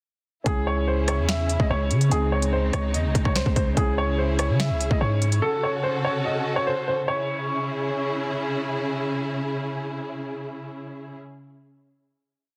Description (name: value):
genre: hip hop, drill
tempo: 145 BPM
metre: 4/4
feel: half-time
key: C# harmonic minor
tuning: A4 = 441 Hz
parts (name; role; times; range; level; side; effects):
- dark concert grand piano; accompaniment; 0.4-5.4 s; B#3 to G#4; -36 LUFS; equal; low-pass filter
- clear upright piano; melody; 0.5-8.3 s; G#4 to E5; -29 LUFS; equal; low-pass filter
- dark symphonic string section; sustained chords; 0.5-11.2 s; C#3 to A4; -31 LUFS; equal; none
- growling 808-style bass; bass; 0.5-5.4 s; C#2 to C#3; -26 LUFS; equal; none
- drill drum kit; drums; 0.5-5.4 s; finger snaps, hi-hat, kick drum, rim click, snare drum; -28 LUFS; equal; vintage 12-bit sampler grit
room: light reverb, studio reverb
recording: dense, heavily limited modern master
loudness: -24 LUFS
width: mono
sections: 0.5-7.1 hook; 7.1-10.4 final chord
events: none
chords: 0.5 C#m; 2.1 G#/C#; 3.8 C#m; 5.4 F#m/C#; 7.1 C#m